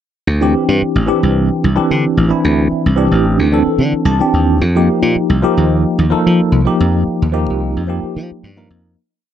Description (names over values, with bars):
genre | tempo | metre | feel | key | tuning
jazz | 110 BPM | 4/4 | straight | D phrygian | A4 = 440 Hz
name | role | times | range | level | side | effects
slap bass | bass | 0.3-8.9 s | A1 to F3 | -14 LUFS | equal | none
barky tine electric piano | accompaniment | 0.4-9.0 s | E3 to A5 | -15 LUFS | equal | medium stereo tremolo, phaser
room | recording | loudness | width
moderate large studio reverb, RT60 0.9 s, digital ambience | dark, warm production | -12 LUFS | side -10 dB against mid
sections
0.3-9.0 groove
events
tine electric piano fill 3.8-4.6; fade-out 6.8-9.0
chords
0.3 D9sus4; 4.6 F9sus4